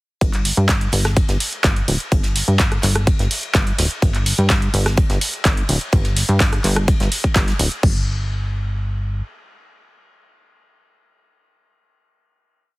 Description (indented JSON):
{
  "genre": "progressive house",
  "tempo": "126 BPM",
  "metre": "4/4",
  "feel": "straight",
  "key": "unclear",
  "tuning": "A4 = 441 Hz",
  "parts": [
    { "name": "plucky analog bass", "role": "bass", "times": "0.2-9.2 s", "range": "D1 to G2", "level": "-19 LUFS", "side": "equal", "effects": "sidechain pumping" },
    { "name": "big-room dance drum kit", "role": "drums", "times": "0.2-7.9 s", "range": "crash cymbal, handclaps, hi-hat, rim click", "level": "-22 LUFS", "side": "equal", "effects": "overdrive" },
    { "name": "electronic kick drum", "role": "drums", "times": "0.2-7.9 s", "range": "none", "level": "-17 LUFS", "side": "equal", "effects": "overdrive" },
    { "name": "soft brush drum kit", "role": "drums", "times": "0.2-7.7 s", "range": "ride cymbal, snare drum", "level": "-32 LUFS", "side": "left 2 dB", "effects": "high-pass filter on cymbals, high-pass filter on snare, high-pass filter on room" }
  ],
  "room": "small room ambience",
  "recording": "heavily compressed radio sound, multiband compression",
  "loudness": "-16 LUFS",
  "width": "side -22 dB against mid",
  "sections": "0.2-7.8 drop; 7.8-11.6 final note",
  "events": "drop 0.2-7.8",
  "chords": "none"
}